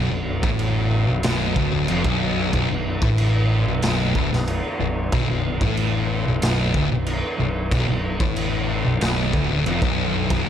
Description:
stoner and doom metal; 93 BPM; 4/4; straight; B minor; A4 = 438 Hz
tonewheel organ; sustained chords; 0.0-10.5 s; D3 to B3; -32 LUFS; right 2 dB; slow rotary speaker, overdrive
thick fuzz guitar; riff; 0.0-10.5 s; B1 to A2; -23 LUFS; left 6 dB; distortion
thick fuzz guitar; riff; 0.0-10.5 s; B1 to A2; -25 LUFS; right 8 dB; distortion
picked electric bass; bass; 0.0-10.5 s; B0 to A1; -28 LUFS; equal; overdrive
raw garage drum kit; drums; 0.4-10.5 s; crash cymbal, kick drum, snare drum; -25 LUFS; equal
light reverb; -19 LUFS; side -9 dB against mid
0.0-10.5 A section
0.0 Bm

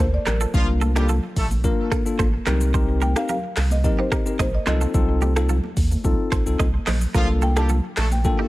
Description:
afrobeats; 109 BPM; 4/4; straight; A4 = 441 Hz
buzzing marimba with medium mallets; melody; 0.0-8.5 s; Bb4 to A5; -29 LUFS; equal; digital delay
bell-like tine electric piano; accompaniment; 0.0-8.5 s; Bb3 to Bb4; -26 LUFS; left 4 dB
direct-recorded clean electric guitar; riff; 0.0-8.5 s; Eb4 to Eb5; -31 LUFS; right 7 dB; wide subtle chorus, digital delay
warm sub bass; bass; 0.0-8.3 s; A1 to Eb2; -21 LUFS; equal
impact; sound effects; 0.0-0.5 s; barely audible
afro-pop drum kit; drums; 0.3-8.4 s; finger snaps, handclaps, hi-hat, kick drum, rim click, shaker; -23 LUFS; equal
congas; percussion; 0.3-8.4 s; -32 LUFS; equal
clear horn section; second line; 0.5-1.5, 7.1-8.1 s; F3 to A4; -31 LUFS; equal; digital delay
little or no reverb; -18 LUFS; side -18 dB against mid
0.0-8.5 A section
impact 0.0-0.5
0.0 Bbmaj7; 2.5 Cm7; 4.7 F7/C; 7.1 Bbmaj7

